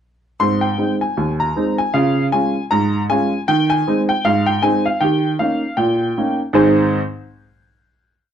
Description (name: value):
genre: ragtime piano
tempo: 78 BPM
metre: 2/4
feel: swing 59% on 16ths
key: Ab major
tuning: A4 = 436 Hz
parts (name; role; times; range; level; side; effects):
- clear upright piano; solo; 0.4-7.0 s; Eb2 to C6; -15 LUFS; equal; none
room: moderate studio reverb, RT60 0.8 s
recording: close, detailed microphones, faint mains hum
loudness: -15 LUFS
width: side -9 dB against mid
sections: 0.4-6.6 A section; 6.6-8.1 final chord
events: none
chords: 0.4 Ab; 1.9 Db; 3.5 Ab/Eb; 5.0 Eb7; 6.6 Ab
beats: | 0.41 1.18 | 1.95 2.71 | 3.48 4.25 | 5.01 5.78 | 6.55